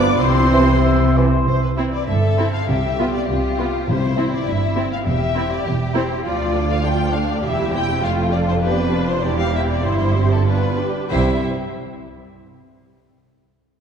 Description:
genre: quick classical-period movement for symphony orchestra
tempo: 100 BPM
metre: 2/4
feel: rubato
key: C major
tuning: A4 = 440 Hz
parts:
  - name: rich studio violin section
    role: melody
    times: 0.0-11.5 s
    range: G4 to D6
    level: -24 LUFS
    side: left 4 dB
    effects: none
  - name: rich studio violin section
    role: second line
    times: 0.0-11.5 s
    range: D4 to D5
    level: -27 LUFS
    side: left 2 dB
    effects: none
  - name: rich studio viola section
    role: accompaniment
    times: 0.0-11.4 s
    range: F3 to A4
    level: -24 LUFS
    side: right 1 dB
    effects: none
  - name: mellow French horn section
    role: sustained chords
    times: 0.0-1.2 s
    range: E3 to C4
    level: -24 LUFS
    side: left 6 dB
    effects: none
  - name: rich studio cello section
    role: bass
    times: 0.0-11.5 s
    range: C2 to C3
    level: -23 LUFS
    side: right 2 dB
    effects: none
  - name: rich studio double bass section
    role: bass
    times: 0.0-11.5 s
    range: E1 to D2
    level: -23 LUFS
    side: right 2 dB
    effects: none
  - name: concert flute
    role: second line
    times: 0.2-1.1 s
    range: C5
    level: -28 LUFS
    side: equal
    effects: none
  - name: mellow clarinet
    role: second line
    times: 0.2-1.1 s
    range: C4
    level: -26 LUFS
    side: left 2 dB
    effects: none
  - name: mellow cor anglais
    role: second line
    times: 0.5-1.5 s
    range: C5 to E5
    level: -26 LUFS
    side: right 2 dB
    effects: none
  - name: mellow bassoon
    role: accompaniment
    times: 0.5-1.3 s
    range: E3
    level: -25 LUFS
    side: right 2 dB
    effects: none
  - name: timpani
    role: percussion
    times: 2.7-4.7, 11.1-11.4 s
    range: C3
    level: -28 LUFS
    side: left 2 dB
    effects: none
room: wet concert hall reverb, RT60 2.4 s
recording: dark, warm production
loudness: -16 LUFS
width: side -7 dB against mid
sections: 0.0-1.5 A section; 1.5-11.1 A section; 11.1-12.3 B section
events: none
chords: 0.2 C; 2.7 G7/C; 3.9 C; 5.1 C/E; 6.3 Dm; 7.4 C/E; 8.0 Dm/F; 8.6 G7/F; 9.2 C/E; 9.8 C/G; 10.5 G7; 11.1 C

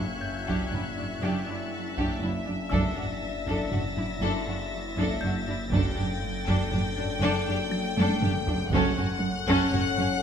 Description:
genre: cinematic, suspense film score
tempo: 60 BPM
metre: 3/4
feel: straight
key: unclear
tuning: A4 = 440 Hz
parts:
  - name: warm chamber violin section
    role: melody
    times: 0.0-10.2 s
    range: E5 to G5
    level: -34 LUFS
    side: left 3 dB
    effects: none
  - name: warm chamber violin section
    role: second line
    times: 0.0-10.1 s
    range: C#4 to A4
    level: -36 LUFS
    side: left 3 dB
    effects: none
  - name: warm studio viola section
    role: accompaniment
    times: 0.0-10.1 s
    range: C#4 to D4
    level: -32 LUFS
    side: right 1 dB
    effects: none
  - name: dark French horn section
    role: sustained chords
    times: 0.0-10.2 s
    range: C#4 to A4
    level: -36 LUFS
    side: left 6 dB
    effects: none
  - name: dark chamber cello section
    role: bass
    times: 0.0-10.1 s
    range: F#2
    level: -31 LUFS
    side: right 2 dB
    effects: none
  - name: overtone-sweeping drone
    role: drone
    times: 0.0-10.2 s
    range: F#1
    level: -37 LUFS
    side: equal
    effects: chorus, built-in reverb, phaser
  - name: music box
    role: texture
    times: 0.0-10.2 s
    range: A5 to A6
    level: -43 LUFS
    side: left 3 dB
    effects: none
  - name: warm chamber violin section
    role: texture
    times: 0.0-10.2 s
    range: C#6 to B#6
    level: -41 LUFS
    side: left 3 dB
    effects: none
  - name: warm chamber cello section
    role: riff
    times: 0.2-10.0 s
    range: F#2 to F#3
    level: -34 LUFS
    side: right 3 dB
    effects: none
  - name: taiko ensemble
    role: drums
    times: 0.5-10.2 s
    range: none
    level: -32 LUFS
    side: equal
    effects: none
  - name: dark chamber double bass section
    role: bass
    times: 0.7-9.8 s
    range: F#1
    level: -33 LUFS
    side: right 2 dB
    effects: none
room: moderate scoring stage reverb, RT60 1.7 s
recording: none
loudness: -25 LUFS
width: side -8 dB against mid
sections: 0.0-10.2 A section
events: drum fill 8.0-8.7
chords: 0.0 Em7/F#; 5.7 Gsus2/F#; 8.7 F#m

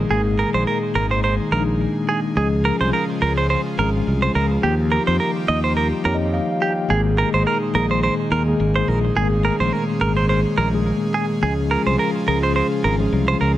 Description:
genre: afrobeats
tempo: 106 BPM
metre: 4/4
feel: swing 55% on 16ths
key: Ab major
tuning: A4 = 440 Hz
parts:
  - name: mellow tine electric piano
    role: accompaniment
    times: 0.0-13.6 s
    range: Eb3 to G5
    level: -22 LUFS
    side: left 2 dB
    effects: medium stereo tremolo
  - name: airy breathy pad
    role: sustained chords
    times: 0.0-13.6 s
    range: Bb2 to Ab4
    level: -28 LUFS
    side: equal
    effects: chorus
  - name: fretless electric bass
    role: bass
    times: 0.0-13.6 s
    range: Ab1 to F2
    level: -21 LUFS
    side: equal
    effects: none
  - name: direct-recorded clean electric guitar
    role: riff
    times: 0.1-13.5 s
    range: G4 to Eb5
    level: -22 LUFS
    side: right 4 dB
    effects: digital delay
room: light reverb, digital ambience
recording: none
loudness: -17 LUFS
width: side -13 dB against mid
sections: 0.0-6.9 A section; 6.9-13.6 B section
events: tine electric piano fill 5.8-6.9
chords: 0.0 Absus2; 2.4 Db; 4.6 Ebadd9; 6.9 Absus2; 11.4 Db

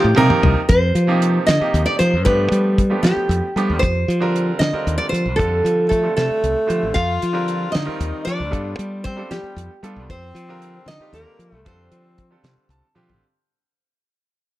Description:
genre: electric jazz fusion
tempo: 76 BPM (dotted quarters)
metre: 6/8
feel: straight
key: unclear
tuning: A4 = 440 Hz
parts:
  - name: nylon-string guitar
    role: melody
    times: 0.0-12.7 s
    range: G4 to F5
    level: -21 LUFS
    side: right 1 dB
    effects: none
  - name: bright baby grand piano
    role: accompaniment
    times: 0.0-13.2 s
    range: C3 to A5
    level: -24 LUFS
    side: right 3 dB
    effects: none
  - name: modern bright fingered electric bass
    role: bass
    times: 0.0-13.2 s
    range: A1 to G3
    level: -20 LUFS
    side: equal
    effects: none
  - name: damped 70s drum kit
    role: drums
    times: 0.2-13.2 s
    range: hi-hat, kick drum, snare drum, toms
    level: -21 LUFS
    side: equal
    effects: none
  - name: breathy tenor saxophone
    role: second line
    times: 5.9-12.7 s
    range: G3 to F4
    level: -29 LUFS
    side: left 4 dB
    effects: none
room: light reverb, studio ambience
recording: none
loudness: -16 LUFS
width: side -15 dB against mid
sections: 0.7-13.2 A section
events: drum fill 0.0-0.7, 13.0; grand piano fill 0.0-0.7, 12.5-13.2; fade-out 0.7-13.2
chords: 0.0 Cm7; 0.7 F9sus4; 2.3 G9; 3.8 F9sus4; 5.4 Dm7/F; 7.0 F9sus4; 8.5 G9; 10.1 F9sus4; 11.7 Dm7/F

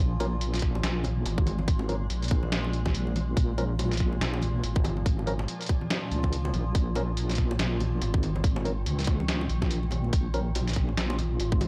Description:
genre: deep dubstep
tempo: 142 BPM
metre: 4/4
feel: swing 59% on 16ths, half-time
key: Bb minor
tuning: A4 = 441 Hz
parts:
  - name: granular cloud pad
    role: sustained chords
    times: 0.1-11.7 s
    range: Bb2 to Ab3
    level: -40 LUFS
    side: equal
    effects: built-in reverb
  - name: deep soft wobble bass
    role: bass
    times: 0.0-11.7 s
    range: Ab1 to Db2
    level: -31 LUFS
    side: equal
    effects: chorus
  - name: backwards swelling texture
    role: texture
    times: 0.0-11.7 s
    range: F4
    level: -42 LUFS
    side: equal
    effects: built-in reverb
  - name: percussive organ stab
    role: stabs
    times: 0.2-10.4 s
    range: F3 to Bb4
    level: -39 LUFS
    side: equal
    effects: chorus, vintage 12-bit sampler grit, dub echo
  - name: trip hop sampler-style drum kit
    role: drums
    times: 0.2-11.7 s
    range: hi-hat, snare drum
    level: -36 LUFS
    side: equal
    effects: overdrive
  - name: bongos and congas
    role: percussion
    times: 0.2-11.7 s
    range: none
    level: -40 LUFS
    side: equal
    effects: dub echo
  - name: electronic kick drum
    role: drums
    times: 0.6-11.6 s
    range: none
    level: -28 LUFS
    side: equal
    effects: none
room: little or no reverb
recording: dry, gritty hardware recording, cassette tape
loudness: -28 LUFS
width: mono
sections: 0.0-11.7 A section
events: none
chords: 0.0 Bbm

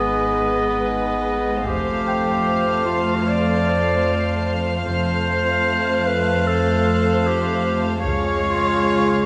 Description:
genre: cinematic, suspense film score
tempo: 75 BPM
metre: 4/4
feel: straight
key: unclear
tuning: A4 = 440 Hz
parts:
  - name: warm chamber violin section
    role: melody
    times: 0.0-9.3 s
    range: Eb5 to F5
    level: -31 LUFS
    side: equal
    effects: none
  - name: clear clarinet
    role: second line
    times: 0.0-9.3 s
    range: Cb4 to D5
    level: -25 LUFS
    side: equal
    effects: none
  - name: warm chamber violin section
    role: second line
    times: 0.0-9.3 s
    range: Cb5 to Db5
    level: -28 LUFS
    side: equal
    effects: none
  - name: dark chamber viola section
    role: accompaniment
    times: 0.0-9.3 s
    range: Ab3 to A3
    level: -27 LUFS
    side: equal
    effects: none
  - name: glass harmonica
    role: sustained chords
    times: 0.0-9.3 s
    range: C4 to Db6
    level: -32 LUFS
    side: equal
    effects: none
  - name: dark chamber cello section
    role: bass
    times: 0.0-9.3 s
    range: Db2 to Ab2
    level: -30 LUFS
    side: equal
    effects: none
  - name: deep rumbling drone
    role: drone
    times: 0.0-9.3 s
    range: Ab1 to F2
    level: -31 LUFS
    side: equal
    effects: built-in reverb
  - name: concert harp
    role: texture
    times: 0.0-7.2 s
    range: G5 to G6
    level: -33 LUFS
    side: equal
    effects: none
  - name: warm chamber double bass section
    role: bass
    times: 1.7-8.8 s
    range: F1 to Db2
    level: -34 LUFS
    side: equal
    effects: none
  - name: taiko ensemble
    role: drums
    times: 1.7-3.2, 8.1-9.3 s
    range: none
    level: -34 LUFS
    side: equal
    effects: none
  - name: warm chamber violin section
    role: texture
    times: 1.7-7.6 s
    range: F6 to C7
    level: -37 LUFS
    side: equal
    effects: none
room: moderate scoring stage reverb, RT60 1.8 s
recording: nothing above 10.7 kHz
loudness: -20 LUFS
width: mono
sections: 0.0-9.3 A section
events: none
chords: 0.0 Abm; 1.7 Fadd9; 8.1 Db

